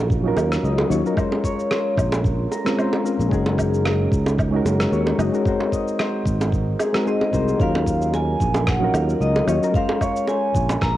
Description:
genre	sunset chillout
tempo	112 BPM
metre	4/4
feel	swing 55% on 16ths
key	unclear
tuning	A4 = 440 Hz
part	soft electric-piano-like synth keys	accompaniment	0.0-11.0 s	Gb3 to Eb5	-23 LUFS	moving between left 4 dB and right 5 dB	chorus, auto-pan, cassette tape, tape echo
part	concert harp	arpeggios	0.0-11.0 s	Ab4 to Bb5	-29 LUFS	left 4 dB	cassette tape, tape echo
part	sustaining fretless electric bass	bass	0.0-11.0 s	Gb1 to Eb2	-22 LUFS	equal	none
part	electronic cabasa, woodblock and rim click	drums	0.1-10.9 s	none	-29 LUFS	right 1 dB	overdrive, studio reverb, cassette tape
part	electronic kick drum	drums	0.1-10.9 s	none	-24 LUFS	equal	overdrive, studio reverb, cassette tape
part	bongos	percussion	0.4-10.8 s	none	-26 LUFS	right 2 dB	none
part	vibraphone with medium hard mallets	melody	7.1-11.0 s	Eb5 to Bb5	-25 LUFS	right 2 dB	cassette tape, tape echo
room	moderate spring reverb, RT60 2.6 s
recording	home recording on cassette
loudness	-18 LUFS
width	side -14 dB against mid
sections	0.0-7.6 A section; 7.6-11.0 B section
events	none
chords	0.0 Ebm9; 1.2 Bbm9; 3.3 Gb69; 5.5 Ab9; 7.6 Ebm9; 9.7 Bbm9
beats	0.10 0.64 | 1.17 1.71 2.25 2.78 | 3.32 3.85 4.39 4.92 | 5.46 6.00 6.53 7.07 | 7.60 8.14 8.67 9.21 | 9.74 10.28 10.82

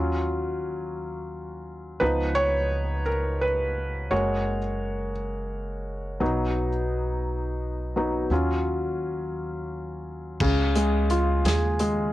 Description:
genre	six-eight pop ballad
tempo	57 BPM (dotted quarters)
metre	6/8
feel	straight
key	unclear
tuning	A4 = 440 Hz
part	felt-muted upright piano	accompaniment	0.0-12.1 s	Db3 to Db5	-26 LUFS	equal	cassette tape
part	upright bass	bass	0.0-12.1 s	Gb1 to Eb2	-29 LUFS	equal	none
part	loose indie drum kit	drums	10.4-12.0 s	crash cymbal, hi-hat, kick drum, snare drum	-30 LUFS	equal	cassette tape
room	little or no reverb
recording	home recording on cassette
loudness	-24 LUFS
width	side -15 dB against mid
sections	0.0-10.4 A section; 10.4-12.1 B section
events	felt piano solo 0.0-10.4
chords	0.0 Ebm7; 2.0 Db7; 4.1 Gbadd9; 6.2 B; 8.3 Ebm7; 10.4 Dbadd9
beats	0.96 | 2.01 3.06 | 4.11 5.16 | 6.21 7.26 | 8.31 9.35 | 10.40 11.45

